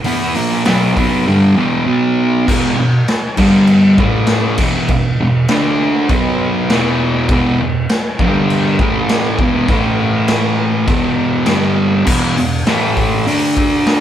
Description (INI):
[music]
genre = garage rock duo or trio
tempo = 100 BPM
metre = 4/4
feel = straight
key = unclear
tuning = A4 = 440 Hz
[part]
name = fuzz guitar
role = riff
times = 0.0-14.0 s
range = E2 to E4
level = -13 LUFS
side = equal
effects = distortion
[part]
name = raw garage drum kit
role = drums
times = 0.0-14.0 s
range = crash cymbal, hi-hat, kick drum, snare drum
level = -18 LUFS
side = equal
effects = none
[sound]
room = wet stone room reverb, RT60 1.2 s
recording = band playing live in one room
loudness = -12 LUFS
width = side -10 dB against mid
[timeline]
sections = 0.0-2.5 A section; 2.5-12.1 B section; 12.1-14.0 C section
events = none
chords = 0.0 E5; 1.9 B5; 2.5 E5; 3.4 G5; 4.0 A5; 4.6 E5; 5.5 D5; 6.1 B5; 6.7 E5; 8.2 G5; 8.8 A5; 9.4 E5; 9.7 A5; 10.9 E5; 11.5 G5; 12.1 E5; 12.7 A5; 13.3 D5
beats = | 0.05 0.66 1.27 1.87 | 2.48 3.08 3.69 4.29 | 4.89 5.49 6.09 6.69 | 7.29 7.89 8.49 9.09 | 9.69 10.29 10.88 11.48 | 12.08 12.68 13.28 13.88